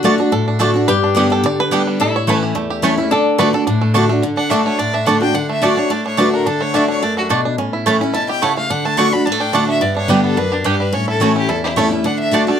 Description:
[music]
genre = bluegrass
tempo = 215 BPM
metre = 4/4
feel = straight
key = D major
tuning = A4 = 440 Hz
[part]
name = bluegrass banjo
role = melody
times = 0.0-12.6 s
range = D3 to D5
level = -21 LUFS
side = right 3 dB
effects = none
[part]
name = lap resonator guitar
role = second line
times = 0.0-4.1 s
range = D4 to G4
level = -20 LUFS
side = left 5 dB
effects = none
[part]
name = picked steel-string acoustic guitar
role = accompaniment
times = 0.0-12.6 s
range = E2 to G4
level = -17 LUFS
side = left 1 dB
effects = none
[part]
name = mandolin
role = stabs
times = 0.0-12.4 s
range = A3 to A5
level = -18 LUFS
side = right 4 dB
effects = none
[part]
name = rich fiddle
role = melody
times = 4.4-12.6 s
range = D4 to C#6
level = -20 LUFS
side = left 1 dB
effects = none
[sound]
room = moderate small room reverb, RT60 0.5 s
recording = none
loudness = -14 LUFS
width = side -8 dB against mid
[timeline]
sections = 0.0-4.2 A section; 4.2-12.6 B section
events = five-string banjo solo 0.0-4.2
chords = 0.0 D; 0.9 G; 2.0 A; 3.1 D; 7.6 A; 8.7 D; 9.8 G; 10.9 A; 12.1 D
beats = 0.05 0.32 0.60 | 0.88 1.16 1.44 1.72 | 2.00 2.27 2.55 2.83 | 3.11 3.39 3.67 3.95 | 4.23 4.51 4.79 5.07 | 5.34 5.62 5.90 6.18 | 6.46 6.74 7.02 7.30 | 7.58 7.86 8.14 8.42 | 8.70 8.98 9.26 9.54 | 9.82 10.10 10.38 10.65 | 10.93 11.21 11.49 11.77 | 12.05 12.33

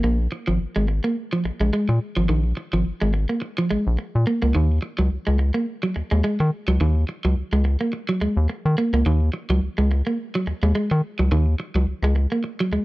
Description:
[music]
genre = funk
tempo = 106 BPM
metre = 4/4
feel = swing 56% on 16ths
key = Eb minor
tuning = A4 = 440 Hz
[part]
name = electric guitar at the edge of break-up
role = riff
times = 0.0-12.8 s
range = Eb3 to Bb3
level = -24 LUFS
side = right 1 dB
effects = none
[part]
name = rubbery square bass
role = bass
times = 0.0-12.8 s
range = Ab1 to Eb3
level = -19 LUFS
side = equal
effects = none
[sound]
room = digital ambience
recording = dry, close 1970s-style studio recording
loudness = -20 LUFS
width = side -19 dB against mid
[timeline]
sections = 0.0-4.6 A section; 4.6-12.8 B section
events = none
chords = 0.0 Bb7(no3); 4.6 Ebm7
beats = | 0.04 0.60 1.17 1.73 | 2.30 2.86 3.42 3.99 | 4.55 5.12 5.68 6.24 | 6.81 7.37 7.93 8.50 | 9.06 9.62 10.19 10.75 | 11.31 11.88 12.44

